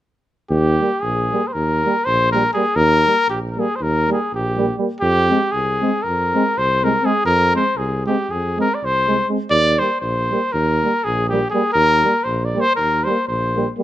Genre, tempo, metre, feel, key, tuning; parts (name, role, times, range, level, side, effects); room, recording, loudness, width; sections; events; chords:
balkan folk, Balkan brass band; 240 BPM (eighths); 9/8; straight; Eb major; A4 = 440 Hz
mellow trumpet; melody; 0.5-13.7 s; G4 to D5; -18 LUFS; left 1 dB; plate reverb
warm tuba; bass; 0.5-13.7 s; Bb1 to F2; -21 LUFS; equal
mellow euphonium; accompaniment; 0.8-13.8 s; Bb3 to C4; -24 LUFS; left 3 dB
warm euphonium; accompaniment; 0.8-13.8 s; G3 to Ab3; -24 LUFS; right 5 dB
moderate small room reverb, RT60 0.5 s; -16 LUFS; side -13 dB against mid
0.5-13.8 A section
0.5 Eb; 5.0 Fm; 9.5 Eb